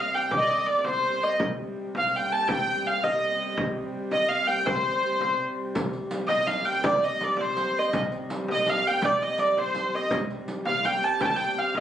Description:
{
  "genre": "medieval dance",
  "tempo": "110 BPM (dotted quarters)",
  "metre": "6/8",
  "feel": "straight",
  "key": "C minor",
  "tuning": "A4 = 438 Hz",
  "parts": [
    { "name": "rich hurdy-gurdy", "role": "melody", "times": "0.0-11.8 s", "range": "C5 to A5", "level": "-24 LUFS", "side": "equal", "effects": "none" },
    { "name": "dark hurdy-gurdy", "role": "drone", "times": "0.0-11.8 s", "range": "C3 to G3", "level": "-33 LUFS", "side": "equal", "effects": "none" },
    { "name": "frame drum", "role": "percussion", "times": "0.3-11.8 s", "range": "none", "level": "-31 LUFS", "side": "equal", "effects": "none" },
    { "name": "riq", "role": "percussion", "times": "5.8-11.5 s", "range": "none", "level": "-36 LUFS", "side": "right 2 dB", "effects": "none" }
  ],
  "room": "light reverb",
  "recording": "recorded on a phone in the room, club reverb, compression",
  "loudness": "-23 LUFS",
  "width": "side -10 dB against mid",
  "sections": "0.0-5.8 A section; 5.8-11.8 A section",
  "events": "none",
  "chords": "none"
}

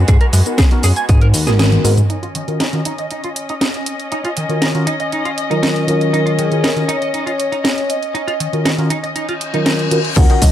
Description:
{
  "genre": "nu-disco, nu disco",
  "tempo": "119 BPM",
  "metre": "4/4",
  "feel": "straight",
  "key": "Eb minor",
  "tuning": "A4 = 440 Hz",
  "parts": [
    { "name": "muted studio violin section", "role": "sustained chords", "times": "0.0-10.5 s", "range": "Ab3 to Eb5", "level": "-24 LUFS", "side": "left 2 dB", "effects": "sidechain pumping, low-pass filter" },
    { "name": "chorused synth bass", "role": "bass", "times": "0.0-2.0, 10.2-10.5 s", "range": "Ab1 to Ab2", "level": "-13 LUFS", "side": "equal", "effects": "sidechain pumping" },
    { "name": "direct-recorded clean electric guitar", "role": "riff", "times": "0.1-9.7 s", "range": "Eb3 to Ab5", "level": "-24 LUFS", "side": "right 2 dB", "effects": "lush chorus, low-pass filter, digital delay" },
    { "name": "electronic kick drum", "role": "drums", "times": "0.1-1.2, 10.2-10.5 s", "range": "none", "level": "-11 LUFS", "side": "equal", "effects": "overdrive" },
    { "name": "house drum kit", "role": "drums", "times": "0.1-10.5 s", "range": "crash cymbal, hi-hat, shaker, snare drum, toms", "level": "-20 LUFS", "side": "equal", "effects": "overdrive" },
    { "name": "mellow tine electric piano", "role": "accompaniment", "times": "0.5-10.5 s", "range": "Eb3 to Bb4", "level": "-18 LUFS", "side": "equal", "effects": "phaser, sidechain pumping, digital delay" },
    { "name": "vibraphone with medium mallets", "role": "melody", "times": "6.1-10.5 s", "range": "Ab4 to Gb5", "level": "-21 LUFS", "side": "left 1 dB", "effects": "ping-pong delay" },
    { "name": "reverse cymbal", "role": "sound effects", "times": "9.3-10.2 s", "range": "none", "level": "-24 LUFS", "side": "left 6 dB", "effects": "none" },
    { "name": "analog pluck", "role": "arpeggios", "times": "10.2-10.5 s", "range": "Db3 to Gb3", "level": "-20 LUFS", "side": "left 2 dB", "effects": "chorus, cassette tape, sidechain pumping" }
  ],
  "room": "light reverb",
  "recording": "none",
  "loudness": "-14 LUFS",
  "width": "side -11 dB against mid",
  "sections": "0.0-2.1 A section; 2.1-10.2 B section",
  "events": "kick drops out 1.6-2.1; drum fill 1.6-2.1; band accent 1.6; filter sweep on clean electric guitar 2.1-10.2; reverse cymbal 9.3-10.2",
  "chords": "0.0 Abm7; 2.1 Ebm7; 9.9 Dbsus2"
}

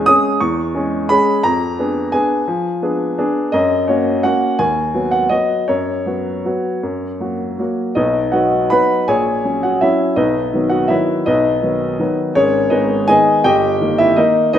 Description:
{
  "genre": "classical, piano waltz",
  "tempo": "150-182 BPM",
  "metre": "3/4",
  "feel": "rubato",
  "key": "B major",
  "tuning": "A4 = 441 Hz",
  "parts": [
    { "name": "warm upright piano", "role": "solo", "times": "0.0-14.6 s", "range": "G1 to D#6", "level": "-14 LUFS", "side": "equal", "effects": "none" }
  ],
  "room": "moderate recital hall reverb, RT60 1.6 s",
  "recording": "minimal, uncompressed stereo recording",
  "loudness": "-14 LUFS",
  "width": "side -10 dB against mid",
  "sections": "0.0-8.0 A section; 8.0-14.6 B section",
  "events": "none",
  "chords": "0.0 C#m/E; 1.4 Fdim7; 3.5 F#; 4.6 B/D#; 5.7 F#sus4; 6.8 F#; 8.0 B; 9.1 F#/A#; 10.2 B; 12.4 G#m; 13.4 D#/G"
}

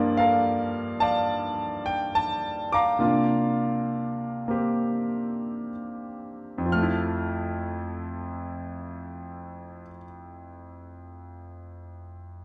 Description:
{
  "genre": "solo jazz",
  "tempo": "61-72 BPM",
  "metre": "4/4",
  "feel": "swing 68% on 8ths",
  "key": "F major",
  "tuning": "A4 = 442 Hz",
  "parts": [
    { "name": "clear concert grand piano", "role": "solo", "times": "0.0-12.4 s", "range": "F2 to F6", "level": "-28 LUFS", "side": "equal", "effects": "none" }
  ],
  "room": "wet large studio reverb, RT60 1.2 s",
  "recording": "heard from further back in the room",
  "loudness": "-27 LUFS",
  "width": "mono",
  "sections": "0.0-6.7 A section; 6.7-10.6 B section",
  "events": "slowing down 0.0-6.7",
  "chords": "0.0 Gm9; 3.0 C9sus4; 6.7 Fmaj7"
}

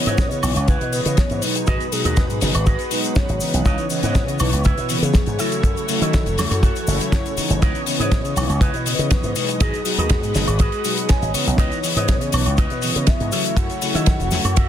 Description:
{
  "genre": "nu-disco, nu disco",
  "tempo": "121 BPM",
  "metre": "4/4",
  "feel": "straight",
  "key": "C# minor",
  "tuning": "A4 = 442 Hz",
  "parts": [
    { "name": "soft octave-layered synth lead", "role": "melody", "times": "0.0-14.7 s", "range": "G#4 to F#5", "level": "-28 LUFS", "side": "left 2 dB", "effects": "chorus, tremolo, digital delay" },
    { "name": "mellow synth brass", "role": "accompaniment", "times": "0.0-14.4 s", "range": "B2 to D#5", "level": "-26 LUFS", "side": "equal", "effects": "chorus, sidechain pumping" },
    { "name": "lush unison pad", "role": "sustained chords", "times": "0.0-14.7 s", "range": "E3 to D#5", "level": "-30 LUFS", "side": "equal", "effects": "chorus, sidechain pumping" },
    { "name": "electric guitar with an envelope filter", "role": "riff", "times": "0.1-14.7 s", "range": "E4 to G#5", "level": "-30 LUFS", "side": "right 4 dB", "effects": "wide subtle chorus" },
    { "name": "slap bass with an envelope filter", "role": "bass", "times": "0.1-14.6 s", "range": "F#1 to D#3", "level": "-22 LUFS", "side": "equal", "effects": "none" },
    { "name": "damped 70s drum kit", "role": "drums", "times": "0.1-14.7 s", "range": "hi-hat, ride cymbal, shaker, snare drum, woodblock", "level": "-24 LUFS", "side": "left 2 dB", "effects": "small room reverb" },
    { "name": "cabasa", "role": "percussion", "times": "0.1-14.7 s", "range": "none", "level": "-35 LUFS", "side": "left 9 dB", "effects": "none" },
    { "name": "kick drum", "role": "drums", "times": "0.2-14.7 s", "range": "none", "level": "-18 LUFS", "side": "equal", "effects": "small room reverb" }
  ],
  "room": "studio reverb",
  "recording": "dense, heavily limited modern master",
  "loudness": "-17 LUFS",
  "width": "side -10 dB against mid",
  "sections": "0.0-14.7 A section",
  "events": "clean electric guitar fill 10.8-11.6",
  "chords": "0.0 C#m9; 1.7 G#m7; 3.7 C#m9; 5.4 F#m7; 7.6 C#m9; 9.6 G#m7; 11.6 C#m9; 13.3 F#m7"
}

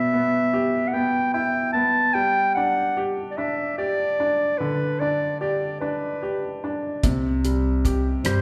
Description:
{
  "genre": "acoustic folk-pop ballad",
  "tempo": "49 BPM (dotted quarters)",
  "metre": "6/8",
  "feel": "straight",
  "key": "unclear",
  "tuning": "A4 = 440 Hz",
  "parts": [
    { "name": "mellow clarinet", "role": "melody", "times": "0.0-8.4 s", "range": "B4 to A5", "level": "-25 LUFS", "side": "equal", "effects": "none" },
    { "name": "bright upright piano", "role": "accompaniment", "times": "0.0-8.4 s", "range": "B2 to G4", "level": "-27 LUFS", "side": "equal", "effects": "none" },
    { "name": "upright bass", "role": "bass", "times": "7.0-8.4 s", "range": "C2 to G2", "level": "-26 LUFS", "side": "equal", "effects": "none" },
    { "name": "cloth-damped thuddy drum kit", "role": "drums", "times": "7.0-8.4 s", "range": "hi-hat, kick drum, rim click", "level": "-26 LUFS", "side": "equal", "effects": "none" }
  ],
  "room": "wet recital hall reverb, RT60 1.4 s",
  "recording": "recorded in a church or concert hall",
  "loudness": "-23 LUFS",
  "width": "mono",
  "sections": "0.0-8.4 A section",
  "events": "none",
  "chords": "0.0 Em; 2.2 G; 7.0 C5"
}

